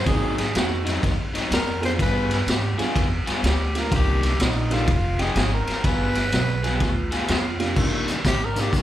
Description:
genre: electric blues shuffle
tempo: 125 BPM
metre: 4/4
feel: swing 65% on 8ths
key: C minor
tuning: A4 = 440 Hz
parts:
  - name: growling tenor saxophone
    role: melody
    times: 0.0-8.8 s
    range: Eb4 to C5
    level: -28 LUFS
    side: equal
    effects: slapback echo
  - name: upright bass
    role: bass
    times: 0.0-8.8 s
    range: F1 to C3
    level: -26 LUFS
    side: equal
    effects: none
  - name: dark upright piano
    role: accompaniment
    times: 0.1-8.2 s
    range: C3 to G5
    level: -31 LUFS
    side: right 4 dB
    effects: none
  - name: overdriven semi-hollow guitar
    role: riff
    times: 0.1-8.8 s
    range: Ab2 to Ab4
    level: -28 LUFS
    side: left 4 dB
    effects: none
  - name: raw garage drum kit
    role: drums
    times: 0.1-8.8 s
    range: crash cymbal, hi-hat, kick drum, ride cymbal, snare drum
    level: -23 LUFS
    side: equal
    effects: none
  - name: electric slide guitar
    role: second line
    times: 6.7-7.7 s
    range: F4 to G4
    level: -37 LUFS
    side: right 3 dB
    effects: none
room: light reverb, small room ambience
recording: live gig heard through the venue's PA, club reverb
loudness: -20 LUFS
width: side -13 dB against mid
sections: 0.0-7.8 A section; 7.8-8.8 B section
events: tenor saxophone solo 7.8-8.8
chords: 0.1 Ab7; 2.0 G7b9; 3.9 Cm9; 4.9 Fm9; 5.8 G7b9; 7.8 Cm9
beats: | 0.06 0.55 1.03 1.51 | 1.99 2.47 2.95 3.44 | 3.92 4.40 4.88 5.36 | 5.84 6.32 6.80 7.28 | 7.76 8.24 8.72

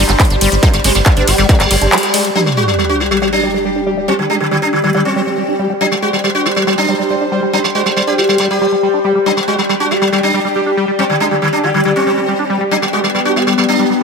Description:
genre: psychedelic trance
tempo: 139 BPM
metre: 4/4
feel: straight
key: G major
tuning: A4 = 441 Hz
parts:
  - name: sitar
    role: melody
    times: 0.0-14.0 s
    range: D3 to G4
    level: -16 LUFS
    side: equal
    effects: phaser, sidechain pumping, ping-pong delay
  - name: pulsing gated texture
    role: sustained chords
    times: 0.0-14.0 s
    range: G3 to C5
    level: -20 LUFS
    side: left 1 dB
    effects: chorus, built-in reverb, sidechain pumping
  - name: liquid acid bass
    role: riff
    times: 0.0-14.0 s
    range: F#3 to G4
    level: -18 LUFS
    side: moving between left 4 dB and right 3 dB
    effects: chorus, auto-pan, sidechain pumping, ping-pong delay
  - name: round analog bass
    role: bass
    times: 0.0-1.9 s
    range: G1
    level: -16 LUFS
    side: equal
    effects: none
  - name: ethereal airy pad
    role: texture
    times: 0.0-14.0 s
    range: G4 to B5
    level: -20 LUFS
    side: right 2 dB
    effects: ensemble chorus, built-in reverb, sidechain pumping
  - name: techno drum kit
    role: drums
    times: 0.1-2.3 s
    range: handclaps, hi-hat, ride cymbal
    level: -16 LUFS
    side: equal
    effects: none
  - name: electronic kick drum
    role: drums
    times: 0.2-1.6 s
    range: none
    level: -12 LUFS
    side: equal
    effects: distortion
  - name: sub drop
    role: sound effects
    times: 2.4-4.1 s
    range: none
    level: -21 LUFS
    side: right 1 dB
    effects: none
room: moderate lush hall reverb, RT60 2.0 s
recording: none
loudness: -11 LUFS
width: side -5 dB against mid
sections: 0.0-2.4 A section; 2.4-14.0 B section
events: drop 0.0-2.4; band accent 1.9; impact 2.4-4.1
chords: 0.0 G5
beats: 0.20 | 0.63 1.06 1.49 1.92 | 2.35 2.79 3.22 3.65 | 4.08 4.51 4.94 5.38 | 5.81 6.24 6.67 7.10 | 7.53 7.97 8.40 8.83 | 9.26 9.69 10.12 10.56 | 10.99 11.42 11.85 12.28 | 12.71 13.15 13.58 14.01

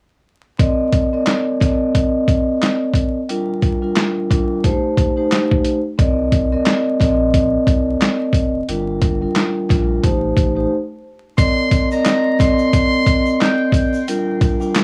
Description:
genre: hip hop, boom-bap hip-hop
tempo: 89 BPM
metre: 4/4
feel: swing 57% on 16ths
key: C dorian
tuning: A4 = 437 Hz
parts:
  - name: vibraphone with soft mallets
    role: accompaniment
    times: 0.6-14.8 s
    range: G3 to Eb5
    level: -20 LUFS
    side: equal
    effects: cassette tape, high-pass filter, low-pass filter, plate reverb
  - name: boom bap sampler-style drum kit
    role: drums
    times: 0.6-14.8 s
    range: handclaps, hi-hat, kick drum, snare drum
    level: -20 LUFS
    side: equal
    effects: none
  - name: warm sub bass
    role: bass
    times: 6.0-10.7 s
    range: F1 to C2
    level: -25 LUFS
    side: equal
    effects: transformer saturation
  - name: trumpet with metal mute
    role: melody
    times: 11.4-13.7 s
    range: G5 to C6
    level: -24 LUFS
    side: equal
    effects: high-pass filter, low-pass filter, plate reverb, tape echo
  - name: egg shaker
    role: percussion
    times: 11.4-14.8 s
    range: none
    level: -45 LUFS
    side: equal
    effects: none
room: light reverb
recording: worn, warbling old tape, cassette tape, vinyl crackle, warbly pitch drift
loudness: -17 LUFS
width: mono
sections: 0.6-11.4 A section; 11.4-14.8 B section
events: break 10.7-11.4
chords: 0.6 Cm9; 3.3 Gm7; 4.6 Am7b5; 6.0 Cm9; 8.7 Gm7; 10.0 Am7b5; 11.4 Cm9; 14.1 Gm7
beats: | 0.59 1.27 1.94 2.62 | 3.29 3.96 4.64 5.31 | 5.99 6.66 7.34 8.01 | 8.68 9.36 10.03 10.71 | 11.38 12.05 12.73 13.40 | 14.08 14.75

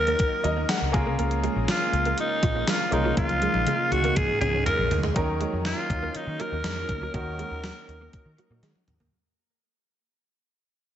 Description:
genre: 1980s-style pop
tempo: 121 BPM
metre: 4/4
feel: straight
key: unclear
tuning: A4 = 440 Hz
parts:
  - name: raspy alto saxophone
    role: melody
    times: 0.0-8.6 s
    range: Eb4 to Bb4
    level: -27 LUFS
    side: equal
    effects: shimmer reverb
  - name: clear grand piano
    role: accompaniment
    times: 0.0-9.1 s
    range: Db3 to Ab5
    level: -32 LUFS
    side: left 1 dB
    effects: shimmer reverb
  - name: ensemble organ-string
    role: sustained chords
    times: 0.0-9.1 s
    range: Db3 to Bb4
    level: -35 LUFS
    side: right 1 dB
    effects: ensemble chorus, shimmer reverb
  - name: vintage muted picked electric bass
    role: bass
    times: 0.0-9.1 s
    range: Bb1 to Eb3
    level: -29 LUFS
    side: equal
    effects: none
  - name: direct-recorded clean electric guitar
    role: riff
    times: 0.1-9.1 s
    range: F3 to Db4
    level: -34 LUFS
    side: right 3 dB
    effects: ensemble chorus, digital delay, shimmer reverb
  - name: gated 80s digital drum machine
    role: drums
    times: 0.1-9.1 s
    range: hi-hat, kick drum, snare drum, tambourine, toms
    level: -28 LUFS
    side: equal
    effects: gated reverb, gated reverb snare, overdrive
room: moderate digital room reverb, RT60 1.4 s, digital ambience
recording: nothing above 8.0 kHz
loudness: -23 LUFS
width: side -10 dB against mid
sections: 0.0-5.2 A section; 5.2-9.1 B section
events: grand piano fill 0.2-1.2; drum fill 3.2-5.2, 8.6-9.1; fade-out 5.2-9.1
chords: 0.0 Ebm7; 0.9 Bbm7; 5.2 Ebm7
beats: 0.20 0.69 | 1.19 1.69 2.18 2.68 | 3.17 3.67 4.17 4.66 | 5.16 5.65 6.15 6.64 | 7.14 7.64 8.13 8.63

